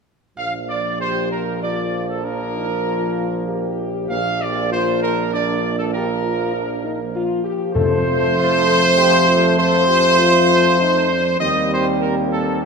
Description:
classical, ceremonial fanfare; 98 BPM; 3/4; straight; Bb major; A4 = 441 Hz
warm trumpet section; melody; 0.4-12.7 s; A4 to F5; -18 LUFS; equal
warm trombone section; sustained chords; 0.4-12.7 s; F3 to Bb3; -24 LUFS; right 3 dB
warm tuba; bass; 0.4-12.7 s; Bb1 to F2; -23 LUFS; right 4 dB
mellow French horn section; sustained chords; 1.0-12.7 s; Bb3 to A4; -24 LUFS; left 5 dB
timpani; percussion; 7.8-8.6 s; F2; -25 LUFS; left 1 dB
wet scoring stage reverb, RT60 1.5 s; -16 LUFS; side -5 dB against mid
0.4-12.7 A section
0.4 Bb; 7.8 F; 11.4 Eb
| 0.37 1.00 1.62 | 2.24 2.85 3.48 | 4.10 4.71 5.32 | 5.93 6.54 7.14 | 7.75 8.36 8.97 | 9.57 10.18 10.79 | 11.40 12.01 12.62

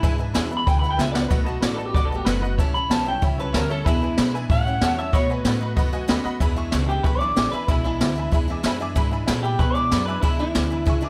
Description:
rockabilly; 188 BPM; 4/4; straight; E mixolydian; A4 = 440 Hz
electric guitar through a small old amp; melody; 0.0-11.0 s; E4 to B5; -28 LUFS; equal; tape echo
honky-tonk upright piano; accompaniment; 0.0-11.1 s; B4 to D6; -34 LUFS; equal
picked steel-string acoustic guitar; accompaniment; 0.0-11.1 s; E2 to F#4; -34 LUFS; equal
upright bass; bass; 0.0-11.1 s; F#1 to B2; -29 LUFS; equal
jazz brush drum kit; drums; 0.0-10.9 s; hi-hat, kick drum, snare drum; -25 LUFS; equal
light reverb; -22 LUFS; mono
0.0-6.4 A section; 6.4-11.1 B section
clean electric guitar solo 0.0-6.4; drum fill 1.0-1.3
0.0 E7; 1.3 B7; 2.6 A7; 3.9 E7; 4.5 A7; 5.1 B7; 6.4 E7
| 0.03 0.35 0.67 0.99 | 1.30 1.62 1.94 2.26 | 2.58 2.90 3.22 3.54 | 3.86 4.18 4.50 4.81 | 5.13 5.45 5.77 6.09 | 6.41 6.72 7.04 7.36 | 7.68 8.00 8.32 8.63 | 8.95 9.27 9.59 9.91 | 10.23 10.55 10.87

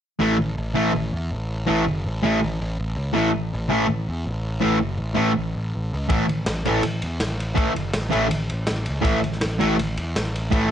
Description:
garage rock duo or trio; 163 BPM; 4/4; straight; A major; A4 = 440 Hz
fuzz guitar; riff; 0.2-10.7 s; A2 to A3; -21 LUFS; equal; distortion
fuzz picked electric bass; bass; 0.2-10.7 s; F#1 to E2; -26 LUFS; equal; overdrive
crunchy breakbeat drum kit; drums; 6.1-10.6 s; kick drum, ride cymbal, snare drum; -26 LUFS; equal
light reverb, small room ambience; nothing above 10.3 kHz; -20 LUFS; side -9 dB against mid
0.2-10.7 A section
0.2 A5
| 0.23 0.59 0.96 1.33 | 1.69 2.06 2.42 2.79 | 3.16 3.52 3.89 4.26 | 4.62 4.99 5.36 5.72 | 6.09 6.46 6.83 7.20 | 7.57 7.94 8.31 8.68 | 9.05 9.42 9.79 10.16 | 10.53

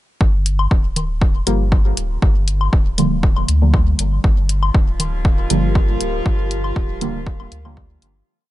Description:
dub techno; 119 BPM; 4/4; straight; G minor; A4 = 438 Hz
warm sub bass; bass; 0.2-8.2 s; D1 to D2; -20 LUFS; equal; sidechain pumping
electronic kick drum; drums; 0.2-7.9 s; -16 LUFS; equal
electronic hi-hat; drums; 0.5-8.1 s; -22 LUFS; left 2 dB
woodblock and congas; percussion; 0.6-7.7 s; -27 LUFS; left 5 dB; overdrive, sidechain pumping on perc, dub echo
deep mellow chord stab; stabs; 1.5-8.3 s; D3 to Bb3; -23 LUFS; right 1 dB; chorus, phaser, sidechain pumping, dub echo
deep dark ambient pad; sustained chords; 5.1-8.2 s; F4 to Bb4; -28 LUFS; equal; chorus, built-in reverb, sidechain pumping
metallic inharmonic drone; texture; 4.6-8.3 s; F3 to F4; -31 LUFS; equal; chorus, built-in reverb, sidechain pumping
little or no reverb; nothing above 11.0 kHz; -15 LUFS; side -16 dB against mid
0.2-8.3 groove
fade-out 5.6-8.3
0.2 Gm7
| 0.21 0.71 1.22 1.72 | 2.22 2.73 3.23 3.74 | 4.24 4.75 5.25 5.75 | 6.26 6.76 7.27 7.77

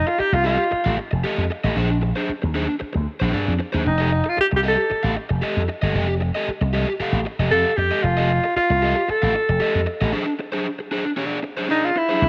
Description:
funk; 115 BPM; 4/4; straight; A4 = 440 Hz
breathy alto saxophone; melody; 0.0-12.3 s; Eb4 to A4; -23 LUFS; equal
slap bass with an envelope filter; bass; 0.0-12.3 s; F1 to G2; -24 LUFS; equal
crunchy overdriven guitar; accompaniment; 0.1-12.2 s; D4 to F5; -27 LUFS; equal
moderate plate reverb, RT60 3.6 s; -21 LUFS; mono
0.0-12.2 A section
break 10.1-12.2
0.0 F9; 1.8 Bb9; 3.9 F9; 10.1 D7(b5, no3)
0.19 0.72 1.24 | 1.76 2.29 2.81 3.33 | 3.85 4.38 4.90 5.42 | 5.95 6.47 6.99 7.51 | 8.04 8.56 9.08 9.60 | 10.12 10.65 11.17 11.69 | 12.21

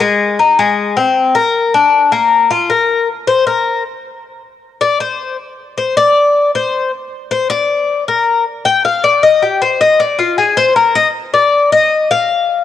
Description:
latin; 156 BPM; 4/4; straight; A4 = 437 Hz
Cuban tres; solo; 0.0-12.6 s; Ab3 to G5; -11 LUFS; left 4 dB; cassette tape
light reverb, small room ambience; home recording on cassette; -10 LUFS; side -11 dB against mid
0.0-3.1 A section; 3.1-12.6 B section
Cuban tres solo 3.1-12.6
| 0.01 0.39 0.78 1.16 | 1.54 1.93 2.31 2.70 | 3.08 3.46 3.85 4.23 | 4.62 5.00 5.39 5.77 | 6.16 6.54 6.92 7.31 | 7.69 8.08 8.46 8.84 | 9.23 9.61 10.00 10.38 | 10.76 11.15 11.53 11.91 | 12.30

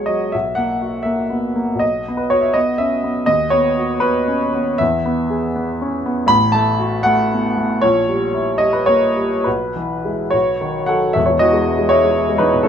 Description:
classical, romantic character piece for solo piano; 67-83 BPM (dotted quarters); 6/8; rubato; B major, E major from 4.8 s; A4 = 439 Hz
warm grand piano; solo; 0.0-12.7 s; E1 to B5; -15 LUFS; equal
light reverb; minimal, uncompressed stereo recording; -15 LUFS; side -8 dB against mid
0.0-11.2 A section; 11.2-12.7 B section
0.3 F#7/B; 1.8 B5; 3.3 B/D#; 4.8 E; 6.3 F#m/A; 7.8 A#dim7; 9.5 E/B; 10.3 B; 11.2 E
| 0.34 1.07 | 1.82 2.55 | 3.28 4.01 | 4.79 5.55 | 6.30 7.05 | 7.82 8.61 | 9.46 10.34 | 11.16 11.92 | 12.67

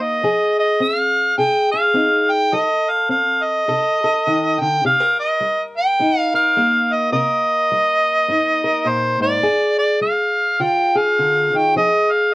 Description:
blues; 104 BPM; 4/4; swing 61% on 8ths; C minor; A4 = 444 Hz
mellow harmonica; melody; 0.0-12.3 s; C5 to G5; -16 LUFS; equal
fingerpicked steel-string acoustic guitar; accompaniment; 0.0-12.3 s; G2 to Bb4; -20 LUFS; left 1 dB
light reverb; worn, warbling old tape, cassette tape, vinyl crackle, warbly pitch drift; -15 LUFS; side -21 dB against mid
0.0-12.3 A section
0.2 Fm7; 2.5 F#dim7; 4.8 Cm7; 9.5 G5; 11.8 Fm7
| 0.23 0.80 1.38 1.96 | 2.53 3.11 3.69 4.26 | 4.84 5.42 5.99 6.57 | 7.15 7.72 8.30 8.88 | 9.46 10.04 10.62 11.20 | 11.78

